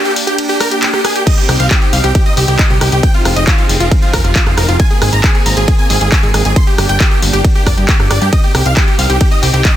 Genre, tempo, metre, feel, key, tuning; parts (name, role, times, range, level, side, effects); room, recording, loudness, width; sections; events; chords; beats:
uplifting trance; 136 BPM; 4/4; straight; C minor; A4 = 438 Hz
filtered supersaw swell; sustained chords; 0.0-9.8 s; F3 to Ab4; -21 LUFS; equal; sidechain pumping
big supersaw lead; melody; 0.1-9.7 s; F4 to C6; -17 LUFS; equal; sidechain pumping, ping-pong delay
punchy analog drum machine; drums; 0.1-9.7 s; crash cymbal, handclaps, hi-hat, ride cymbal, rim click; -17 LUFS; equal
electronic kick drum; drums; 1.3-9.7 s; -11 LUFS; equal; overdrive
plucky analog bass; bass; 1.5-9.6 s; F1 to G2; -14 LUFS; equal; sidechain pumping
digital ambience; dense, heavily limited modern master; -9 LUFS; side -12 dB against mid
0.0-9.8 A section
break 0.0-1.3
0.0 Gm; 1.3 Cm; 3.0 Fm7; 4.8 Abadd9; 6.6 Gm; 8.3 Cm
0.39 0.83 | 1.27 1.71 2.15 2.59 | 3.03 3.47 3.91 4.36 | 4.80 5.24 5.68 6.12 | 6.56 7.00 7.44 7.88 | 8.33 8.77 9.21 9.65